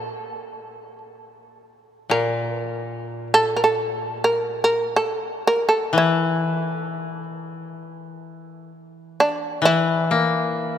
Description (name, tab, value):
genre	japanese traditional, Japanese chamber music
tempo	free time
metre	none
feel	none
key	unclear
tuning	A4 = 440 Hz
part	shamisen	melody	0.0-10.8 s	D4 to Bb4	-21 LUFS	right 1 dB	none
part	koto	accompaniment	0.0-10.8 s	Bb2 to Bb3	-23 LUFS	left 4 dB	none
room	wet cathedral reverb, RT60 5.2 s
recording	none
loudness	-19 LUFS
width	side -9 dB against mid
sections	0.0-10.8 A section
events	none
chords	none